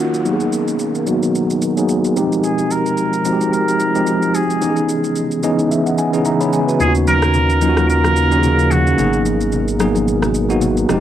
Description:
amapiano; 110 BPM; 4/4; swing 55% on 16ths; A4 = 441 Hz
trumpet with straight mute; melody; 0.0-9.3 s; Gb4 to Bb4; -20 LUFS; right 1 dB; low-pass filter, cassette tape, analog delay
bell-like tine electric piano; accompaniment; 0.0-11.0 s; Fb3 to Cb6; -16 LUFS; equal; medium stereo tremolo, low-pass filter, cassette tape
glassy FM pad; sustained chords; 0.0-11.0 s; Cb3 to G5; -24 LUFS; right 1 dB; ensemble chorus, built-in reverb, low-pass filter, cassette tape
downlifter; sound effects; 0.0-2.4 s; -37 LUFS; equal
electronic shaker and rim click; drums; 0.1-11.0 s; -27 LUFS; right 1 dB; overdrive, cassette tape
sub bass with octave; bass; 6.8-11.0 s; F1 to Eb2; -19 LUFS; equal
congas; percussion; 6.8-11.0 s; -26 LUFS; left 8 dB
moderate studio reverb, RT60 0.6 s; home recording on cassette; -14 LUFS; side -11 dB against mid
0.0-11.0 A section
filter sweep 0.0-11.0; tine electric piano fill 5.2-6.8; kick muted 6.8-7.3
0.3 Abm9; 2.2 Fm9; 4.6 Dbm9; 6.8 Ebm9; 9.0 Abm9

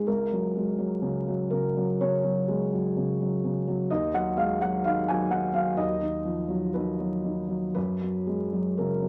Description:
neoclassical minimalist piano; 59-64 BPM; 4/4; rubato; A4 = 440 Hz
felt-muted upright piano; solo; 0.0-9.1 s; C#2 to G#5; -27 LUFS; equal
moderate small room reverb, RT60 0.5 s; vinyl crackle; -27 LUFS; mono
0.0-9.1 A section
0.1 F#/C#; 3.9 B/D#; 7.8 F#

